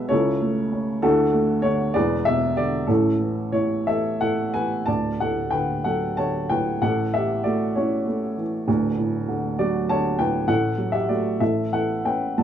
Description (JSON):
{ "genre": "classical, lyrical solo piano", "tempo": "59-67 BPM (dotted quarters)", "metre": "6/8", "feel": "rubato", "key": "A major, D major from 4.9 s", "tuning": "A4 = 441 Hz", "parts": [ { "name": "dark upright piano", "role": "solo", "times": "0.0-12.4 s", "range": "D1 to A5", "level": "-20 LUFS", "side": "equal", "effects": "none" } ], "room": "moderate studio ambience, RT60 0.5 s", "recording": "dark, warm production", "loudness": "-20 LUFS", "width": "side -9 dB against mid", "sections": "0.0-4.9 A section; 4.9-12.4 B section", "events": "none", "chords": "0.1 A/C#; 1.0 Dadd9; 2.0 E7; 2.9 A; 4.9 D; 6.8 A; 8.7 D; 10.5 Em11/A; 11.4 Aadd9", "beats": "0.12 | 1.04 1.96 | 2.90 3.87 | 4.87 5.86 | 6.83 7.77 | 8.68 9.59 | 10.49 11.41 | 12.39" }